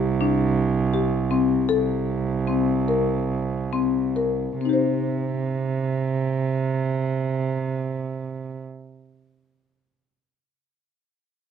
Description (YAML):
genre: contemporary instrumental, contemporary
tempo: 129-168 BPM (eighths)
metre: 7/8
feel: straight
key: C dorian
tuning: A4 = 441 Hz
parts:
  - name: marimba with medium mallets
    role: arpeggios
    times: 0.0-9.4 s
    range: C4 to C5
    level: -24 LUFS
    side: left 9 dB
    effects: none
  - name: dark cello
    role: bass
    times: 0.0-8.6 s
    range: C2 to C3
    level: -23 LUFS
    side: right 5 dB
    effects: none
room: light reverb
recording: close, detailed microphones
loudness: -21 LUFS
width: side -8 dB against mid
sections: 0.0-4.6 A section; 4.6-7.9 B section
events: slowing down 0.0-4.6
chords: 0.0 Csus2; 1.7 Am/C; 4.6 Cm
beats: 0.21 0.57 0.94 1.31 | 1.69 2.08 2.47 2.88 3.29 3.72 4.16 | 4.61 5.07 5.54 6.00 6.47 6.93 7.40